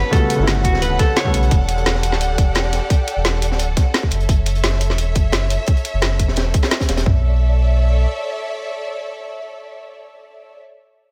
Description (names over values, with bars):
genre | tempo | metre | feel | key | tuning
liquid drum and bass | 173 BPM | 4/4 | straight | B minor | A4 = 438 Hz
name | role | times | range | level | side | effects
clean electric guitar | melody | 0.0-1.4 s | F#4 to C#5 | -26 LUFS | equal | dub echo
warm baby grand piano | accompaniment | 0.0-1.5 s | C#3 to A4 | -25 LUFS | equal | digital delay
warm studio string section | sustained chords | 0.0-10.6 s | G4 to F#5 | -28 LUFS | equal | none
sub bass with octave | bass | 0.0-8.1 s | D1 to B1 | -20 LUFS | equal | none
crunchy breakbeat drum kit | drums | 0.1-7.1 s | hi-hat, snare drum | -29 LUFS | equal | high-pass filter on hats, high-pass filter on snare, high-pass filter on room
drum and bass drum kit | drums | 0.1-7.1 s | kick drum, toms | -19 LUFS | equal | none
drum and bass drum kit | drums | 0.1-7.0 s | hi-hat, snare drum | -24 LUFS | equal | none
room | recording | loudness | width
little or no reverb | none | -18 LUFS | mono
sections
0.0-7.1 A section; 7.1-9.8 B section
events
none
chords
0.0 Gmaj9#11; 1.5 Em11; 4.1 F#m7; 7.1 Bm11